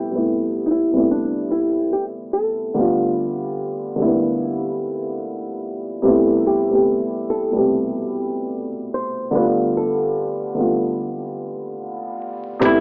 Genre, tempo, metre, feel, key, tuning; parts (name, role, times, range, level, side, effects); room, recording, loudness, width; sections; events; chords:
lo-fi hip hop; 73 BPM; 4/4; swing 60% on 16ths; A4 = 440 Hz
archtop guitar, miked and amplified; melody; 0.0-12.8 s; D4 to C5; -25 LUFS; equal; low-pass filter, cassette tape
dark upright piano; accompaniment; 0.0-12.8 s; B2 to G4; -22 LUFS; equal; cassette tape, low-pass filter
upright bass; bass; 12.6-12.8 s; A1; -32 LUFS; equal
trip hop sampler-style drum kit; drums; 12.6-12.8 s; hi-hat, kick drum; -28 LUFS; equal; cassette tape
light reverb; home recording on cassette, vinyl crackle, low-pass filter, AM radio sound; -21 LUFS; mono
0.0-12.6 A section
filter sweep 0.0-12.6
0.0 Am9; 2.8 G9; 6.0 Am9; 9.3 G9